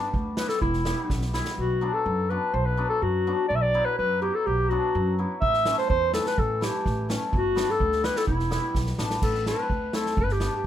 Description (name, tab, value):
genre	klezmer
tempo	126 BPM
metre	2/4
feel	straight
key	unclear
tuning	A4 = 439 Hz
part	hammered dulcimer	accompaniment	0.0-10.5 s	E3 to G4	-31 LUFS	left 2 dB	none
part	upright bass	bass	0.1-10.5 s	E1 to F#2	-29 LUFS	equal	none
part	street-band drum kit	drums	0.1-1.6, 5.4-10.7 s	crash cymbal, kick drum, snare drum	-29 LUFS	right 1 dB	none
part	mellow clarinet	melody	0.4-10.7 s	E4 to E5	-25 LUFS	left 1 dB	none
room	light reverb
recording	none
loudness	-22 LUFS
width	side -11 dB against mid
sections	0.0-1.6 A section; 1.6-9.2 A section; 9.2-10.7 B section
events	drum fill 1.1-1.6, 8.7-9.2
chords	0.0 G; 0.6 Em; 1.6 Bm; 5.4 A5; 7.3 G; 8.3 Em; 9.2 Am